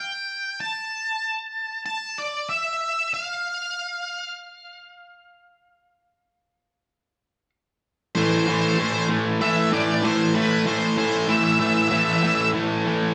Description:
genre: rock.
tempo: 95 BPM.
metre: 4/4.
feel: straight.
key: A minor.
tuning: A4 = 442 Hz.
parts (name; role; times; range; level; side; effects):
octave-fuzz lead guitar; melody; 0.0-12.5 s; B4 to A5; -27 LUFS; equal; distortion.
distorted electric guitar; riff; 8.2-13.1 s; A2 to A3; -23 LUFS; equal; distortion.
room: wet stone room reverb, RT60 1.1 s.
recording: band playing live in one room.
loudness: -23 LUFS.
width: mono.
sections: 0.0-8.2 A section; 8.2-13.1 B section.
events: none.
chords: 0.0 N.C.; 8.2 Am.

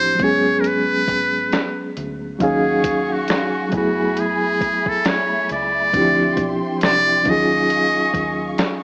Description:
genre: lo-fi hip hop.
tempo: 68 BPM.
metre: 4/4.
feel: swing 57% on 16ths.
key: unclear.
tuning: A4 = 441 Hz.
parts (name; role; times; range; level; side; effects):
trumpet with metal mute; melody; 0.0-8.6 s; Gb4 to Eb5; -19 LUFS; equal; none.
mellow reed electric piano; accompaniment; 0.0-8.8 s; E3 to F5; -20 LUFS; equal; fast tremolo.
deep dub fingered electric bass; bass; 0.0-8.5 s; Gb1 to Eb2; -33 LUFS; equal; none.
lo-fi sampler-style drum kit; drums; 0.2-8.8 s; hi-hat, kick drum, snare drum; -22 LUFS; equal; none.
warm studio string section; sustained chords; 2.4-8.8 s; F3 to Db6; -29 LUFS; equal; none.
room: light reverb.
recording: rough home demo mix, cassette tape, small speaker sound.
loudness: -16 LUFS.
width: side -31 dB against mid.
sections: 0.0-8.8 A section.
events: none.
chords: 0.2 Abm7; 2.4 Ebm11; 3.7 Gbm11; 5.9 Dm11; 7.3 Ebm11.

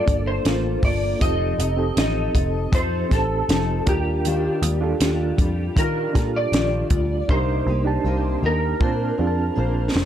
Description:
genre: indie pop, bedroom pop.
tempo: 79 BPM.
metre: 4/4.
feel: straight.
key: unclear.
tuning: A4 = 439 Hz.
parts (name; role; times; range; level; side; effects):
electric slide guitar; melody; 0.0-9.9 s; G4 to Eb5; -26 LUFS; equal; ensemble chorus, tape echo.
fingerpicked steel-string acoustic guitar; accompaniment; 0.0-10.1 s; C3 to C5; -28 LUFS; left 4 dB; ensemble chorus, vibrato effect.
reed electric piano; accompaniment; 0.0-10.1 s; Bb3 to A5; -28 LUFS; right 6 dB; fast tremolo, cassette tape.
vintage muted picked electric bass; bass; 0.1-10.1 s; F1 to Eb3; -24 LUFS; equal; none.
compact cocktail drum kit; drums; 0.1-10.1 s; hi-hat, kick drum, snare drum; -22 LUFS; equal; none.
room: light reverb.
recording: dark, warm production.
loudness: -19 LUFS.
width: side -10 dB against mid.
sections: 0.0-10.1 A section.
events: drum fill 7.3-10.1.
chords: 0.0 Gm9; 1.2 F7; 3.9 Ebmaj9; 7.3 Cm7; 8.8 Bbmaj9.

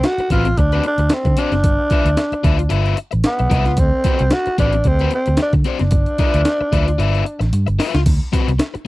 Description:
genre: funk.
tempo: 112 BPM.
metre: 4/4.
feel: swing 56% on 16ths.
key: D mixolydian.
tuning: A4 = 441 Hz.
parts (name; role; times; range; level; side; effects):
growling tenor saxophone; melody; 0.0-7.5 s; B3 to F#4; -20 LUFS; equal; none.
crunchy overdriven guitar; accompaniment; 0.0-8.8 s; C4 to E5; -23 LUFS; left 8 dB; none.
breakbeat sampler-style drum kit; drums; 0.0-8.9 s; crash cymbal, hi-hat, kick drum, snare drum; -18 LUFS; equal; none.
vintage muted fingered electric bass; bass; 0.2-8.8 s; F#1 to D3; -17 LUFS; equal; none.
room: little or no reverb.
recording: dry, close 1970s-style studio recording.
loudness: -14 LUFS.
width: side -18 dB against mid.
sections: 0.0-8.1 A section.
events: drum fill 7.5-8.1.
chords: 0.0 D6; 1.6 G13; 3.8 D6; 5.9 G13; 8.1 D6.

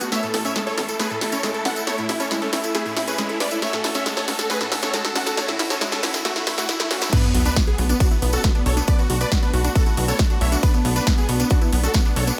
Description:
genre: uplifting trance.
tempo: 137 BPM.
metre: 4/4.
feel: straight.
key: B minor.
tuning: A4 = 440 Hz.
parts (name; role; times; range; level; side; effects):
supersaw chords; melody; 0.0-12.4 s; A3 to F#5; -29 LUFS; equal; sidechain pumping, tape echo.
dark baby grand piano; second line; 0.0-12.4 s; B3 to F#5; -35 LUFS; equal; none.
dark chamber string section; sustained chords; 0.0-12.4 s; A3 to F#4; -34 LUFS; equal; sidechain pumping.
unison pluck; arpeggios; 0.0-12.3 s; A2 to A4; -32 LUFS; equal; sidechain pumping, tape echo.
plucky analog bass; bass; 0.0-12.3 s; A1 to B1; -26 LUFS; equal; sidechain pumping, high-pass filter.
big-room dance drum kit; drums; 0.0-12.4 s; crash cymbal, hi-hat, ride cymbal, snare drum; -28 LUFS; equal; high-pass filter on snare, high-pass filter on hats, high-pass filter on cymbals.
tambourine; percussion; 0.0-12.4 s; none; -35 LUFS; equal; none.
riser and sub drop; sound effects; 0.0-8.9 s; none; -34 LUFS; equal; none.
electronic kick drum; drums; 7.1-12.0 s; none; -21 LUFS; equal; none.
room: moderate digital room reverb, RT60 1.0 s, digital ambience.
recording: high-pass filter.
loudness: -21 LUFS.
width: mono.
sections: 0.0-7.1 A section; 7.1-12.4 B section.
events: build-up 0.0-7.1; drum fill 0.0-7.1; drop 7.1-12.4; impact 7.1-8.9.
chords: 0.1 A; 7.1 Bm7.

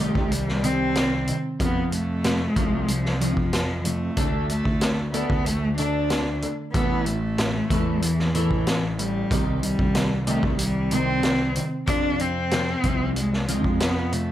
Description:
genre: quiet-loud alternative rock.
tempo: 93 BPM.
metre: 4/4.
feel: straight.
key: unclear.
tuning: A4 = 440 Hz.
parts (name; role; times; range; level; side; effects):
rich cello; melody; 0.0-14.3 s; E3 to D4; -26 LUFS; equal; slapback echo.
twelve-string electric guitar; arpeggios; 0.0-14.3 s; F2 to D4; -28 LUFS; equal; ensemble chorus, slapback echo.
fuzz picked electric bass; bass; 0.0-14.3 s; A1 to F2; -28 LUFS; equal; overdrive.
raw garage drum kit; drums; 0.2-14.3 s; hi-hat, kick drum, snare drum; -26 LUFS; equal; none.
room: light reverb, small room ambience.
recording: none.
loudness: -21 LUFS.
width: side -12 dB against mid.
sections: 0.0-14.3 A section.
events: none.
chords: 0.0 Cm; 1.6 F5; 4.2 D5; 6.7 A5; 9.3 Cm; 11.9 F5.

